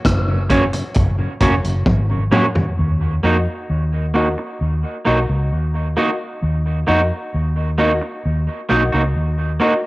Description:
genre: dub reggae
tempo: 66 BPM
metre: 4/4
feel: straight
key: Eb minor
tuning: A4 = 438 Hz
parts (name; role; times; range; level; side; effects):
- vintage drum kit; drums; 0.0-2.8 s; hi-hat, kick drum, rim click, toms; -19 LUFS; equal; cassette tape
- vintage muted fingered electric bass; bass; 0.1-9.6 s; F1 to F2; -19 LUFS; equal; none
- mellow tonewheel organ; accompaniment; 0.3-2.7 s; Gb2 to Gb4; -27 LUFS; left 1 dB; slow rotary speaker, cassette tape, dub echo
- electric guitar at the edge of break-up; accompaniment; 0.5-9.7 s; Bb3 to Gb4; -20 LUFS; right 2 dB; cassette tape, dub echo
- dark upright piano; stabs; 3.2-9.8 s; Gb4 to Eb5; -25 LUFS; left 2 dB; cassette tape, dub echo
room: moderate spring reverb, RT60 2.7 s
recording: home recording on cassette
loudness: -16 LUFS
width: side -20 dB against mid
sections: 0.0-2.8 A section; 2.8-9.9 B section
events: break 0.0-2.8; drum fill 1.9-2.8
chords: 0.0 Gb; 2.8 Ebm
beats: 0.05 0.96 1.87 | 2.78 3.69 4.60 5.51 | 6.42 7.33 8.24 9.15

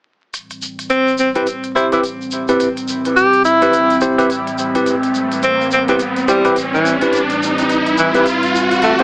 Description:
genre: glitch hop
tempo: 106 BPM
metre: 4/4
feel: swing 60% on 16ths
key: A minor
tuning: A4 = 440 Hz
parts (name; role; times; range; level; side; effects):
- warbly tape-like pad; sustained chords; 0.3-9.0 s; A2 to C4; -21 LUFS; equal; chorus, built-in reverb
- electronic hi-hat; drums; 0.3-9.0 s; none; -31 LUFS; equal; small room ambience
- tube shaker; percussion; 0.3-9.0 s; none; -28 LUFS; equal; none
- riser; sound effects; 2.9-9.0 s; none; -19 LUFS; equal; none
- warm tenor saxophone; melody; 0.9-9.0 s; E3 to G4; -16 LUFS; equal; dub echo
- tine electric piano; stabs; 1.4-9.0 s; C4 to C5; -17 LUFS; equal; medium stereo tremolo, low-pass filter, dub echo
room: wet studio ambience, RT60 0.5 s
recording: heavily compressed radio sound, multiband compression, vinyl crackle, high-pass filter, AM radio sound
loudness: -12 LUFS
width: side -24 dB against mid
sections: 0.3-9.0 A section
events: build-up 0.3-9.0; riser 2.9-9.0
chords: 0.3 Am7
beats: | 0.34 0.91 1.47 2.04 | 2.60 3.17 3.73 4.30 | 4.87 5.43 6.00 6.57 | 7.13 7.70 8.26 8.83

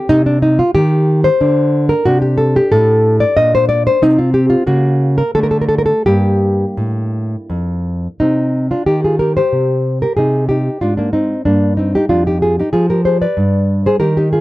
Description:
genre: classical, baroque-style dance for nylon-string guitar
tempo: 82-95 BPM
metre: 3/4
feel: rubato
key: G minor, C minor from 8.2 s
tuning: A4 = 440 Hz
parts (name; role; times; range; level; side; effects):
- nylon-string guitar; solo; 0.0-14.4 s; F2 to Eb5; -12 LUFS; equal; none
room: little or no reverb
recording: dry, close 1970s-style studio recording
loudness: -12 LUFS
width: side -17 dB against mid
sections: 0.0-8.2 A section; 8.2-14.4 A section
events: none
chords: 0.1 Cm; 1.4 N.C.; 2.1 D5/C; 3.4 Bbadd9; 4.0 N.C.; 4.7 F#/C#; 5.3 D5; 6.1 Gm; 8.2 Cm; 9.5 C5; 10.2 Ab; 12.1 Ddim/F; 13.4 G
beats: | 0.09 0.74 1.42 | 2.06 2.72 3.36 | 4.01 4.66 5.34 | 6.05 6.78 7.50 | 8.21 8.87 9.53 | 10.18 10.81 11.46 | 12.11 12.75 13.39 | 14.02

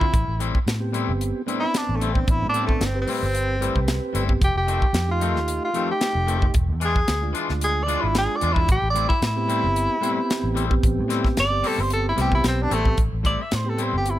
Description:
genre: straight-eighth soul blues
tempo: 112 BPM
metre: 4/4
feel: swing 54% on 16ths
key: A minor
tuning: A4 = 440 Hz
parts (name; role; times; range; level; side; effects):
- warm tenor saxophone; melody; 0.0-14.2 s; A3 to E5; -24 LUFS; equal; none
- mellow tonewheel organ; accompaniment; 0.0-14.2 s; G#3 to B4; -29 LUFS; right 3 dB; slow rotary speaker
- twangy electric guitar; stabs; 0.0-14.0 s; F2 to F4; -30 LUFS; left 8 dB; vibrato effect
- vintage muted fingered electric bass; bass; 0.0-14.2 s; E1 to A2; -25 LUFS; equal; none
- tight funk drum kit; drums; 0.0-14.2 s; hi-hat, kick drum, snare drum; -24 LUFS; equal; none
room: little or no reverb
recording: none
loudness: -20 LUFS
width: side -14 dB against mid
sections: 0.0-13.0 A section; 13.0-14.2 B section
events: tenor saxophone solo 0.0-13.0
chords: 0.1 Am7; 4.4 F7; 6.6 E7b9; 8.7 Am7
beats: | 0.14 0.67 1.21 1.74 | 2.28 2.81 3.34 3.88 | 4.41 4.95 5.48 6.02 | 6.55 7.09 7.62 8.16 | 8.69 9.23 9.76 10.30 | 10.83 11.37 11.90 12.44 | 12.98 13.52 14.05

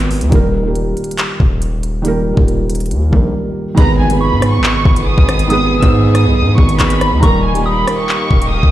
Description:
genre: hip hop, drill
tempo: 139 BPM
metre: 4/4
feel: half-time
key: G# harmonic minor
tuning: A4 = 440 Hz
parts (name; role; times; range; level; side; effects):
- felt-muted upright piano; accompaniment; 0.0-8.7 s; D#3 to B4; -18 LUFS; right 2 dB; low-pass filter
- distorted 808-style bass; bass; 0.0-8.7 s; C#1 to G#2; -15 LUFS; equal; distortion
- drill drum kit; drums; 0.0-8.7 s; handclaps, hi-hat, kick drum, rim click; -14 LUFS; equal; none
- warm studio violin section; melody; 3.8-8.7 s; G#5 to E6; -19 LUFS; equal; low-pass filter, ping-pong delay
- soft synth bell; second line; 3.8-8.5 s; B5 to D#6; -23 LUFS; left 2 dB; chorus, phaser, ping-pong delay
- warm chamber string section; sustained chords; 3.8-8.7 s; D#3 to G#4; -22 LUFS; right 3 dB; none
- impact; sound effects; 3.8-5.5 s; none; -23 LUFS; equal; none
room: small room ambience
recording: played on a big sound system in a bare room, stone room reverb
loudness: -11 LUFS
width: side -13 dB against mid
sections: 0.0-3.8 A section; 3.8-8.7 B section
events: break 3.3-3.8; impact 3.8-5.5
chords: 0.3 D#; 3.8 G#m; 7.2 D#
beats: | 0.32 0.75 1.18 1.62 | 2.05 2.48 2.91 3.34 | 3.77 4.21 4.64 5.07 | 5.50 5.93 6.36 6.80 | 7.23 7.66 8.09 8.52

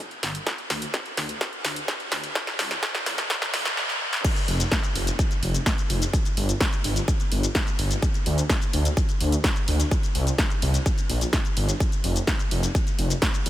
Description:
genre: EDM, festival progressive house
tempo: 127 BPM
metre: 4/4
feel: straight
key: unclear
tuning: A4 = 444 Hz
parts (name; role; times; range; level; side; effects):
- big-room dance drum kit; drums; 0.1-13.5 s; crash cymbal, hi-hat, shaker, snare drum; -26 LUFS; equal; high-pass filter on snare, studio ambience, high-pass filter on hats, high-pass filter on cymbals, high-pass filter on perc
- wide detuned saw bass; bass; 0.2-13.5 s; F1 to D2; -24 LUFS; equal; chorus, sidechain pumping
- electronic kick drum; drums; 0.5-13.3 s; none; -24 LUFS; equal; high-pass filter on kick, studio ambience
room: light reverb, digital ambience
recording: high-pass filter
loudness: -22 LUFS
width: side -14 dB against mid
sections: 0.0-4.2 A section; 4.2-13.5 B section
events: build-up 0.0-4.2; drum fill 0.0-3.8, 3.8-4.2; drop 4.2-13.5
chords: none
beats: | 0.47 0.94 1.41 1.88 | 2.35 2.83 3.30 3.77 | 4.25 4.72 5.19 5.66 | 6.13 6.61 7.08 7.55 | 8.03 8.50 8.97 9.44 | 9.91 10.39 10.86 11.33 | 11.80 12.28 12.75 13.22

